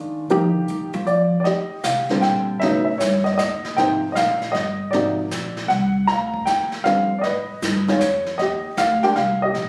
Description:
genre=jazz piano trio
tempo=156 BPM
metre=3/4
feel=swing 66% on 8ths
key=Eb major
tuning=A4 = 440 Hz
part: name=dark upright piano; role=melody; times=0.0-9.7 s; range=C3 to Bb5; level=-22 LUFS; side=equal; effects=none
part: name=upright bass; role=bass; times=0.0-9.7 s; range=G1 to F3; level=-28 LUFS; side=equal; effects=none
part: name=jazz brush drum kit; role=drums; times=0.3-9.7 s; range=brushed snare drum, hi-hat, kick drum, snare drum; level=-31 LUFS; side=equal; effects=none
room=moderate club reverb, RT60 0.6 s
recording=recorded on a phone in the room, studio reverb, compression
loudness=-21 LUFS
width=mono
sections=0.0-1.5 A section; 1.5-9.7 B section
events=upright bass solo 0.0-1.5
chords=0.0 Ebadd9; 1.5 Eb69; 2.6 A7#11; 3.8 Abmaj9; 4.9 Ab7#11; 6.1 Gm7; 7.2 Db9; 8.4 Eb69

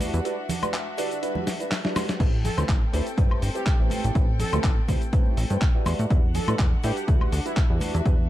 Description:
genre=filtered disco house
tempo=123 BPM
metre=4/4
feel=swing 54% on 16ths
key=A dorian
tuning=A4 = 442 Hz
part: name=warm grand piano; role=accompaniment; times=0.0-8.1 s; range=G3 to B4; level=-32 LUFS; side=right 2 dB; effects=phaser, vintage 12-bit sampler grit, sidechain pumping
part: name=warm studio string section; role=sustained chords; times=0.0-8.3 s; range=C4 to G5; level=-36 LUFS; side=left 2 dB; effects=sidechain pumping
part: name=plucky analog bass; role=bass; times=0.0-8.3 s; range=G1 to A2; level=-26 LUFS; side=equal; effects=sidechain pumping
part: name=dusty soul sampler-style drum kit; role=drums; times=0.0-8.2 s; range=cabasa, crash cymbal, handclaps, hi-hat, snare drum, woodblock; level=-31 LUFS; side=left 1 dB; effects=sidechain pumping on hats, sidechain pumping on perc, sidechain pumping on cymbals
part: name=tube shaker and congas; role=percussion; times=0.0-8.2 s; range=none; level=-34 LUFS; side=right 1 dB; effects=sidechain pumping on perc
part: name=analog synth brass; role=melody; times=1.0-7.6 s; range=D4 to A4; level=-35 LUFS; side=equal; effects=chorus, sidechain pumping, digital delay
part: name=electronic kick drum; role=drums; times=2.2-8.2 s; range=none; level=-22 LUFS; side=equal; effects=none
room=little or no reverb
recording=dark, warm production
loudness=-21 LUFS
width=side -14 dB against mid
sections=0.0-8.3 A section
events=drum fill 1.5-2.2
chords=0.0 Em9; 2.2 Am7; 5.9 Em9

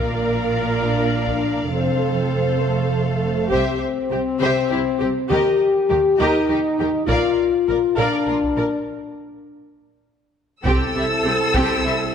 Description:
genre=cinematic, epic orchestral film score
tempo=67 BPM (dotted quarters)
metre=6/8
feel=straight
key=C mixolydian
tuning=A4 = 440 Hz
part: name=warm symphonic violin section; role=melody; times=0.0-12.1 s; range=G4 to E6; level=-28 LUFS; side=left 3 dB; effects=none
part: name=rich symphonic violin section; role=second line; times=0.0-11.9 s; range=C4 to G5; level=-27 LUFS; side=left 2 dB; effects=none
part: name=warm symphonic viola section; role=accompaniment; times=0.0-11.9 s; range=C4 to Bb4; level=-25 LUFS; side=right 2 dB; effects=none
part: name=mellow French horn section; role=sustained chords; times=0.0-12.1 s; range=A3 to G4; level=-21 LUFS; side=left 4 dB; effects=none
part: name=warm symphonic cello section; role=bass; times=0.0-12.1 s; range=F2 to A4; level=-27 LUFS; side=right 3 dB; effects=none
part: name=warm symphonic double bass section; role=bass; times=0.0-11.9 s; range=F1 to Eb2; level=-27 LUFS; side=right 4 dB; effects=none
part: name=taiko ensemble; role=drums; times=1.3-12.1 s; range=none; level=-27 LUFS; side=right 1 dB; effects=none
part: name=dark trombone section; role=sustained chords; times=10.7-12.1 s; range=G3 to C4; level=-30 LUFS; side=right 5 dB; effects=none
room=wet scoring stage reverb, RT60 1.9 s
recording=none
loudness=-17 LUFS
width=side -7 dB against mid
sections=0.0-10.7 A section; 10.7-12.1 B section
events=break 8.9-10.7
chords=0.0 Bb; 1.7 F; 3.5 C; 5.3 Eb; 7.1 Bb; 8.9 N.C.; 10.7 C

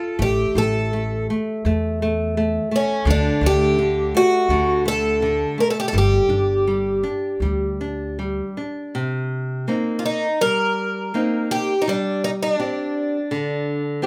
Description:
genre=fado-style ballad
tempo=83 BPM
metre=4/4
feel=rubato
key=C minor from 8.9 s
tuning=A4 = 438 Hz
part: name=picked twelve-string acoustic guitar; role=melody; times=0.0-13.8 s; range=C#4 to Bb4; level=-23 LUFS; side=equal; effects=none
part: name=nylon-string guitar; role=accompaniment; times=0.0-14.1 s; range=C3 to G4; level=-26 LUFS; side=equal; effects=none
part: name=upright bass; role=bass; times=0.2-8.4 s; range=G1 to E2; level=-25 LUFS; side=equal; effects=none
room=light reverb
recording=band playing live in one room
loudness=-21 LUFS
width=mono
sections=0.0-8.9 A section; 8.9-14.1 B section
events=none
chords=0.2 A5; 3.1 D5; 5.9 G5; 8.9 Cm7; 11.9 Gsus4

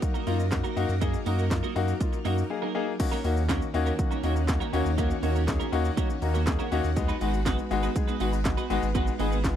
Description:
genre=dance-pop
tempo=121 BPM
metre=4/4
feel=straight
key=Eb minor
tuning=A4 = 440 Hz
part: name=warm grand piano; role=accompaniment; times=0.0-9.6 s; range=Ab3 to Bb5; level=-30 LUFS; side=left 8 dB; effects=sidechain pumping
part: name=string machine, violins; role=sustained chords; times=0.0-9.6 s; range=Eb3 to Cb5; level=-35 LUFS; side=right 2 dB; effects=ensemble chorus, sidechain pumping
part: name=twelve-string electric guitar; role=riff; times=0.0-9.5 s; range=Bb3 to Cb5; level=-34 LUFS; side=right 10 dB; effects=analog chorus
part: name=house drum kit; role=drums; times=0.0-9.6 s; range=crash cymbal, handclaps, hi-hat, kick drum, shaker, snare drum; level=-29 LUFS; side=right 1 dB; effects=overdrive
part: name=warm sub bass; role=bass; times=0.3-9.6 s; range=Ab1 to Gb2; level=-27 LUFS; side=right 1 dB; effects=sidechain pumping
room=little or no reverb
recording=dry, close 1970s-style studio recording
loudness=-24 LUFS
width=side -10 dB against mid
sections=0.0-3.0 A section; 3.0-9.6 A section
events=break 2.5-3.0; grand piano fill 6.0-7.0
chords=0.0 Gb6; 3.0 Ebm7; 7.0 Abm7

